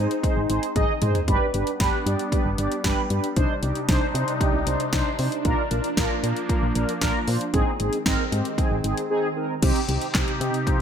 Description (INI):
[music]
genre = synth-pop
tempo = 115 BPM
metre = 4/4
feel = straight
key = C minor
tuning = A4 = 440 Hz
[part]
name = mellow synth brass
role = accompaniment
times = 0.0-10.8 s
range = C4 to Eb5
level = -26 LUFS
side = right 1 dB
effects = chorus
[part]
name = phased analog pad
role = sustained chords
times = 0.0-10.8 s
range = C3 to G4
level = -29 LUFS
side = equal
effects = phaser, chorus
[part]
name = solid FM bass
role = bass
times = 0.0-10.5 s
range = G1 to C3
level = -26 LUFS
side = equal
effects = none
[part]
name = house drum kit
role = drums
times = 0.1-10.8 s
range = crash cymbal, handclaps, hi-hat, kick drum, snare drum, toms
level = -24 LUFS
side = equal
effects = none
[sound]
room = moderate plate reverb, RT60 1.4 s, digital ambience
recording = bright 1980s-style digital production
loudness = -21 LUFS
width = side -8 dB against mid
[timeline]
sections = 0.0-9.6 A section; 9.6-10.8 B section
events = drum fill 0.8-1.3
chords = 0.0 Ab; 1.3 G; 3.4 Cmadd9; 5.5 Bb; 7.5 Ab; 9.6 Cm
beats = 0.23 0.76 | 1.28 1.80 2.32 2.84 | 3.37 3.89 4.41 4.93 | 5.45 5.97 6.50 7.02 | 7.54 8.06 8.58 9.10 | 9.63 10.15 10.67